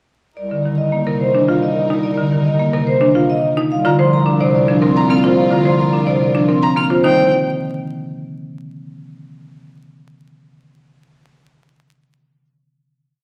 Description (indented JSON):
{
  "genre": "classical, minimalist pattern music",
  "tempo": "108 BPM",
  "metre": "3/4",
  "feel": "straight",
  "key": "C minor",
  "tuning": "A4 = 440 Hz",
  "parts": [
    { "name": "vibraphone with medium hard mallets", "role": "melody", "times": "0.4-7.3 s", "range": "Bb4 to C6", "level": "-21 LUFS", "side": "equal", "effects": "none" },
    { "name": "rich symphonic violin section", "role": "sustained chords", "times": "0.4-6.9 s", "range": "Eb4 to Bb4", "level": "-31 LUFS", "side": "equal", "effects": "none" },
    { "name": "warm bass clarinet", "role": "bass", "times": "0.4-7.3 s", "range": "C2", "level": "-26 LUFS", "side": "equal", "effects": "none" },
    { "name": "marimba with medium hard mallets", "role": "accompaniment", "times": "0.5-7.3 s", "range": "C3 to D4", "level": "-21 LUFS", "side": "equal", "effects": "none" },
    { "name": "buzzing marimba with hard mallets", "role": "arpeggios", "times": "1.1-7.3 s", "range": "C4 to D5", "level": "-21 LUFS", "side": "equal", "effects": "none" },
    { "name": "warm violin", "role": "arpeggios", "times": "3.8-7.3 s", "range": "G5 to F6", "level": "-26 LUFS", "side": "equal", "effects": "none" }
  ],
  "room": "wet recital hall reverb, RT60 1.5 s",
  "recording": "vinyl crackle",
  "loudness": "-15 LUFS",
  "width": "mono",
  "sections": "0.4-7.0 A section; 7.0-8.7 final chord",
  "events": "none",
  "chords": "0.4 Cm9; 3.7 Bbsus2/C; 7.0 Cm"
}